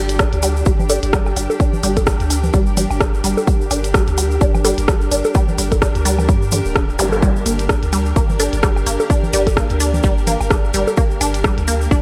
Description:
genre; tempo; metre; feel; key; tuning
minimal techno; 128 BPM; 4/4; swing 57% on 16ths; G minor; A4 = 438 Hz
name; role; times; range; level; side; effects
punchy sub bass; bass; 0.0-12.0 s; D1 to G2; -23 LUFS; equal; tube saturation, sidechain pumping
granular cloud pad; texture; 0.0-12.0 s; D4 to G5; -27 LUFS; equal; built-in reverb, sidechain pumping
minimal click drum kit; drums; 0.1-11.8 s; hi-hat, rim click; -24 LUFS; equal; none
egg shaker; percussion; 0.1-12.0 s; none; -31 LUFS; equal; none
resonant blip pluck; riff; 0.2-12.0 s; D3 to D4; -25 LUFS; equal; phaser, cassette tape, sidechain pumping, analog delay
electronic kick drum; drums; 0.2-12.0 s; none; -19 LUFS; equal; none
woodblock, congas and bongos; percussion; 0.4-11.3 s; none; -25 LUFS; equal; tape echo
zap; sound effects; 7.0-7.1 s; none; -30 LUFS; equal; none
room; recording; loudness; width
light reverb; none; -17 LUFS; mono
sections
0.0-12.0 A section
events
none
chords
0.0 Gm

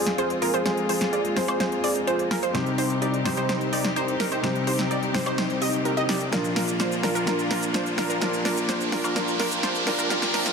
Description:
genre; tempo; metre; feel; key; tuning
EDM, festival progressive house; 127 BPM; 4/4; straight; unclear; A4 = 440 Hz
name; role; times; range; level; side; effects
dark concert grand piano; accompaniment; 0.0-10.5 s; Bb2 to Ab4; -28 LUFS; left 3 dB; ping-pong delay
clear symphonic string section; sustained chords; 0.0-10.5 s; C3 to G4; -34 LUFS; left 2 dB; none
wide unison pluck; arpeggios; 0.0-10.5 s; Bb4 to Eb5; -30 LUFS; right 1 dB; ping-pong delay
supersaw stab; riff; 0.0-10.5 s; D4 to Eb5; -28 LUFS; right 2 dB; low-pass filter, ping-pong delay
fat analog bass; bass; 0.0-10.5 s; Bb1 to F2; -38 LUFS; right 1 dB; none
riser; sound effects; 5.1-10.5 s; none; -33 LUFS; right 2 dB; none
big-room dance drum kit; drums; 0.1-10.5 s; cabasa, hi-hat, snare drum, woodblock; -29 LUFS; equal; overdrive
room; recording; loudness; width
moderate huge ambient reverb, RT60 4.5 s; dense, heavily limited modern master, high-pass filter; -22 LUFS; side -5 dB against mid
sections
0.0-10.5 A section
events
build-up 0.0-10.5; drum fill 0.0-10.5; filter sweep on supersaw synth 0.0-10.5; filter sweep 0.0-10.5; riser 5.1-10.5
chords
0.0 Fm; 2.5 Cm; 6.3 Bb

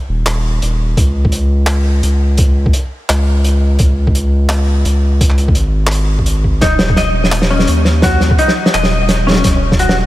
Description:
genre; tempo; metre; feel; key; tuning
half-time drum and bass; 170 BPM; 4/4; swing 56% on 16ths, half-time; unclear; A4 = 441 Hz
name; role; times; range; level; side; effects
saturated sub bass; bass; 0.1-10.1 s; Eb1 to Eb2; -13 LUFS; equal; none
crunchy breakbeat drum kit; drums; 0.3-10.0 s; handclaps, hi-hat, snare drum; -17 LUFS; equal; none
electronic kick drum; drums; 1.0-9.8 s; none; -14 LUFS; equal; none
semi-hollow electric guitar; arpeggios; 6.6-10.0 s; Db4 to Eb5; -16 LUFS; left 2 dB; vintage 12-bit sampler grit, diffuse ambient delay
room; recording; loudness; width
light reverb, studio reverb; none; -10 LUFS; side -16 dB against mid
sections
0.0-10.1 A section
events
none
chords
0.0 N.C.; 1.0 Db5; 6.6 N.C.

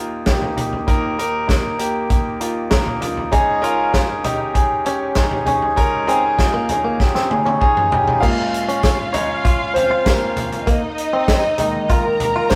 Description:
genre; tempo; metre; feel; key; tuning
piano-driven pop; 98 BPM; 4/4; straight; unclear; A4 = 439 Hz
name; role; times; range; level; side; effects
clear concert grand piano; accompaniment; 0.0-12.6 s; Db2 to F5; -21 LUFS; equal; none
natural country drum kit; drums; 0.3-12.6 s; crash cymbal, hi-hat, kick drum, snare drum, toms; -22 LUFS; equal; none
direct-recorded clean electric guitar; riff; 3.3-12.5 s; Bb3 to F4; -26 LUFS; equal; spring reverb
warm studio violin section; second line; 8.2-12.6 s; Eb4 to Bb5; -24 LUFS; equal; none
tambourine; percussion; 8.8-12.6 s; none; -40 LUFS; equal; none
room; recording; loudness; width
moderate stone room reverb, RT60 1.1 s; rough rehearsal-room recording; -18 LUFS; mono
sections
0.0-8.2 A section; 8.2-12.6 B section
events
drum fill 7.0-8.2; grand piano solo 8.2-12.6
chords
0.0 Eb; 3.3 Dbsus2; 8.2 Bbm7; 10.7 Ebsus4

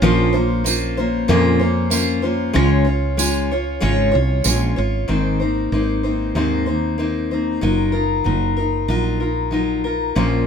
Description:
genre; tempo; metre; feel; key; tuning
acoustic folk duo or small band; 95 BPM; 4/4; straight; Ab mixolydian; A4 = 441 Hz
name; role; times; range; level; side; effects
picked steel-string acoustic guitar; accompaniment; 0.0-10.5 s; Ab2 to Db5; -18 LUFS; left 2 dB; none
woody fretless electric bass; bass; 0.0-10.5 s; Gb1 to F2; -21 LUFS; right 2 dB; none
tambourine; percussion; 0.7-4.6 s; none; -21 LUFS; right 8 dB; none
room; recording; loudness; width
light reverb; minimal, uncompressed stereo recording; -16 LUFS; side -7 dB against mid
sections
0.0-5.1 A section; 5.1-10.5 B section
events
none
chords
0.0 Bbmadd9; 2.5 Db; 5.1 Abadd9; 7.6 Ebmadd9/Gb

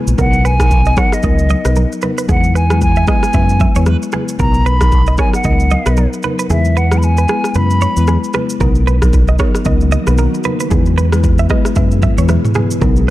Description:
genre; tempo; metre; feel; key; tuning
afrobeats; 114 BPM; 4/4; swing 58% on 16ths; B major; A4 = 441 Hz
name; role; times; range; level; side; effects
marimba with medium mallets; accompaniment; 0.0-13.0 s; F#3 to B4; -19 LUFS; left 4 dB; none
fingered electric bass; bass; 0.1-13.1 s; A#1 to F#2; -13 LUFS; equal; none
afro-pop drum kit; drums; 0.1-13.1 s; kick drum, rim click, shaker, toms; -16 LUFS; equal; none
hollow concert flute; melody; 0.2-8.3 s; D#5 to B5; -19 LUFS; equal; ping-pong delay
direct-recorded clean electric guitar; riff; 0.2-12.9 s; G#4 to E5; -23 LUFS; right 6 dB; harmonic tremolo, ping-pong delay
congas; percussion; 0.2-13.1 s; none; -25 LUFS; right 2 dB; none
ethereal airy pad; sustained chords; 9.6-13.1 s; B2 to G#4; -24 LUFS; equal; ensemble chorus, built-in reverb
room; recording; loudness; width
digital ambience; dark, warm production; -11 LUFS; side -16 dB against mid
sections
0.0-8.6 A section; 8.6-13.1 B section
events
kick muted 6.5-8.6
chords
0.2 Bmaj7; 2.3 E; 4.4 Bmaj7; 6.5 E; 8.6 Bmaj7; 10.7 E

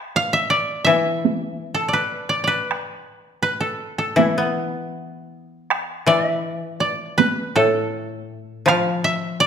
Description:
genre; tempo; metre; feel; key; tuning
japanese traditional, Japanese chamber music; 81 BPM; 4/4; rubato; E in sen; A4 = 441 Hz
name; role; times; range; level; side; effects
koto; melody; 0.2-9.5 s; E4 to F5; -20 LUFS; right 1 dB; none
koto; accompaniment; 0.9-9.5 s; A2 to B3; -21 LUFS; left 2 dB; none
taiko ensemble; percussion; 0.9-8.8 s; none; -23 LUFS; right 5 dB; none
room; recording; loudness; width
moderate recital hall reverb, RT60 1.5 s; minimal, uncompressed stereo recording; -18 LUFS; side -7 dB against mid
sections
0.0-5.7 A section; 5.7-9.5 B section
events
none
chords
none

